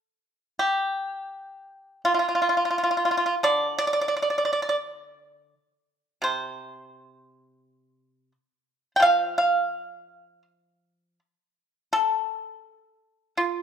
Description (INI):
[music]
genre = chinese traditional, Chinese solo plucked strings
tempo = 85 BPM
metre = 4/4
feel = uneven beats, rubato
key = unclear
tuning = A4 = 439 Hz
[part]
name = pipa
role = solo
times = 0.6-13.6 s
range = C3 to G5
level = -22 LUFS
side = equal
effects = none
[sound]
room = moderate large studio reverb, RT60 1.2 s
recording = band playing live in one room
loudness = -22 LUFS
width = side -8 dB against mid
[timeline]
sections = 0.6-13.6 A section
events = none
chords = none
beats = | 0.61 1.34 2.06 2.76 | 3.46 4.17 4.87 5.55 | 6.24 6.95 7.65 8.33 | 9.02 9.73 10.46 11.20 | 11.94 12.67 13.39